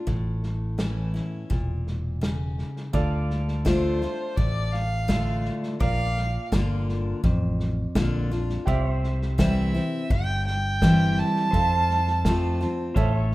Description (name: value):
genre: honky-tonk and classic country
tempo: 84 BPM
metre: 4/4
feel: straight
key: D minor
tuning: A4 = 439 Hz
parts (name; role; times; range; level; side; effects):
- picked steel-string acoustic guitar; accompaniment; 0.0-13.3 s; F2 to F4; -27 LUFS; left 1 dB; none
- fingered electric bass; bass; 0.1-13.3 s; E1 to F2; -26 LUFS; equal; none
- vintage drum kit; drums; 0.1-13.3 s; hi-hat, kick drum, snare drum; -28 LUFS; equal; none
- bright upright piano; accompaniment; 2.9-13.3 s; F4 to F5; -35 LUFS; right 4 dB; none
- pedal steel guitar; sustained chords; 2.9-13.3 s; C5 to F5; -40 LUFS; equal; wide subtle chorus
- warm fiddle; melody; 3.7-12.6 s; C5 to A5; -28 LUFS; right 2 dB; none
room: moderate plate reverb, RT60 1.8 s, studio reverb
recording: rough home demo mix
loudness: -22 LUFS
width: side -18 dB against mid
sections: 0.0-2.9 A section; 2.9-13.3 B section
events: none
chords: 0.1 A; 2.9 Dm; 5.8 Bb; 8.7 C; 11.5 F